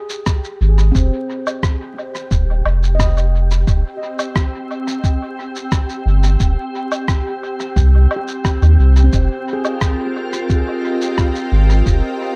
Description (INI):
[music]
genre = ambient dub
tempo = 88 BPM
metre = 4/4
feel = straight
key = F minor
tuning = A4 = 440 Hz
[part]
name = handpan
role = arpeggios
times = 0.0-11.3 s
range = C4 to Eb5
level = -30 LUFS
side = equal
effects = tape echo
[part]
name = wind-like tuned noise texture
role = texture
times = 0.0-12.4 s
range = G4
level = -31 LUFS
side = equal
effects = built-in reverb
[part]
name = electronic shaker, rim click and woodblock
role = drums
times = 0.1-12.0 s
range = none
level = -28 LUFS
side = equal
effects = dub echo
[part]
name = electronic kick drum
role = drums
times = 0.3-12.0 s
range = none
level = -19 LUFS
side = equal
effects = none
[part]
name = warm sub bass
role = bass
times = 0.6-12.0 s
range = Eb1 to Eb2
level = -14 LUFS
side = equal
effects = none
[part]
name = soft additive organ-like pad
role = sustained chords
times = 4.0-12.4 s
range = C4 to G5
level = -27 LUFS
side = equal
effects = ensemble chorus, built-in reverb
[sound]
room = digital ambience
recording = echo-heavy mix, vinyl crackle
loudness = -17 LUFS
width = mono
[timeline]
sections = 0.0-12.4 A section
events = none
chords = 0.0 Fm7; 3.7 Eb6; 9.1 Fm7